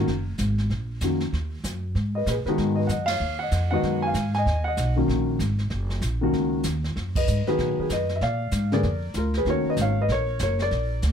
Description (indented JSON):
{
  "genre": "jazz piano trio",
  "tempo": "192 BPM",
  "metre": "4/4",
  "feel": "swing 61% on 8ths",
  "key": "Eb minor",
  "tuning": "A4 = 436 Hz",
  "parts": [
    { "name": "dark baby grand piano", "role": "melody", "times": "0.0-11.1 s", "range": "D3 to Ab5", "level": "-24 LUFS", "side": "left 1 dB", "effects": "none" },
    { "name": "upright bass", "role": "bass", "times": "0.0-11.1 s", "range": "Gb1 to Bb2", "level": "-25 LUFS", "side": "equal", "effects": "none" },
    { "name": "jazz brush drum kit", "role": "drums", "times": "0.1-11.1 s", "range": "brushed snare drum, crash cymbal, hi-hat, kick drum, ride cymbal, snare drum", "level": "-34 LUFS", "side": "right 2 dB", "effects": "none" }
  ],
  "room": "little or no reverb",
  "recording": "close, detailed microphones",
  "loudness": "-22 LUFS",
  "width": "side -8 dB against mid",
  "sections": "0.0-11.1 A section",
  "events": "band accent 3.1, 7.1",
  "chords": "0.0 Ebm; 2.0 Abm7; 4.5 Ebm7; 7.0 Bmaj7; 8.2 Bb7; 9.5 Ebm7",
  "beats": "0.09 0.40 | 0.71 1.02 1.34 1.65 | 1.96 2.27 2.59 2.90 | 3.21 3.52 3.84 4.15 | 4.46 4.77 5.09 5.40 | 5.71 6.03 6.34 6.65 | 6.96 7.28 7.59 7.90 | 8.22 8.53 8.84 9.15 | 9.47 9.78 10.10 10.41 | 10.72 11.04"
}